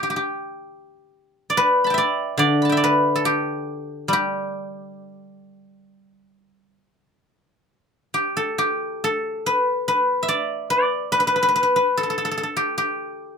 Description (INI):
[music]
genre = chinese traditional, Chinese solo plucked strings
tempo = 64-73 BPM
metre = 4/4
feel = rubato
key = G gong mode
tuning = A4 = 440 Hz
[part]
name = guzheng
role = solo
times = 0.0-13.4 s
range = D3 to B5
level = -19 LUFS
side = equal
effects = none
[sound]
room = little or no reverb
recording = close, detailed microphones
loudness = -19 LUFS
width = side -6 dB against mid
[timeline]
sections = 0.0-7.7 A section; 7.7-13.4 B section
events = none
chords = none